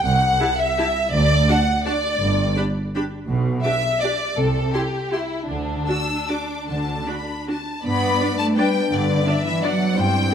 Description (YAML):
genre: classical, orchestral ballroom waltz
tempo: 145-184 BPM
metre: 3/4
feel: rubato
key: G major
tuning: A4 = 441 Hz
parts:
  - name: warm symphonic violin section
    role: second line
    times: 0.0-10.3 s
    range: D4 to F#5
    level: -23 LUFS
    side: left 1 dB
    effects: none
  - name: clear symphonic double bass section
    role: bass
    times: 0.0-10.3 s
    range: G1 to G2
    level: -25 LUFS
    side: right 2 dB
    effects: none
  - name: warm symphonic cello section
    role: bass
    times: 0.0-10.3 s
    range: C2 to B3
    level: -25 LUFS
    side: right 2 dB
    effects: none
  - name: bright symphonic violin section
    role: melody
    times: 0.4-10.3 s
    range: D5 to E6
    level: -27 LUFS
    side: left 5 dB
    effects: none
  - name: rich symphonic viola section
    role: accompaniment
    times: 0.4-10.3 s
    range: D4 to D5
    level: -28 LUFS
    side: right 1 dB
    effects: none
  - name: mellow French horn section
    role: sustained chords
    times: 7.8-10.3 s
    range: B3 to E4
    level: -25 LUFS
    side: left 5 dB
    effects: none
room: wet recital hall reverb, RT60 1.5 s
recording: none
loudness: -18 LUFS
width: side -8 dB against mid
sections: 0.0-7.8 A section; 7.8-10.3 B section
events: none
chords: 0.0 Am7/C (rootless); 1.1 D; 2.2 G5; 3.3 G/B; 4.4 C; 5.5 D; 7.8 G